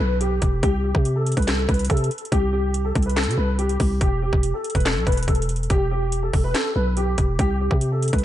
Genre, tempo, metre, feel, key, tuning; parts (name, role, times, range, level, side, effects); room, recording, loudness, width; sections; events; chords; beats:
hip hop, trap; 142 BPM; 4/4; half-time; E minor; A4 = 439 Hz
dark baby grand piano; melody; 0.0-8.2 s; G4 to B4; -26 LUFS; left 1 dB; ensemble chorus, low-pass filter, analog delay
growling 808-style bass; bass; 0.0-8.2 s; E1 to C3; -22 LUFS; equal
trap drum kit; drums; 0.2-8.2 s; handclaps, hi-hat, kick drum, snare drum; -23 LUFS; equal; overdrive
light reverb, digital ambience; nothing above 10.6 kHz; -19 LUFS; side -12 dB against mid
0.0-8.2 A section
0.0 Em; 0.6 C5; 4.0 Em; 7.4 C5
0.21 | 0.63 1.05 1.48 1.90 | 2.32 2.74 3.17 3.59 | 4.01 4.43 4.86 5.28 | 5.70 6.12 6.55 6.97 | 7.39 7.81 8.24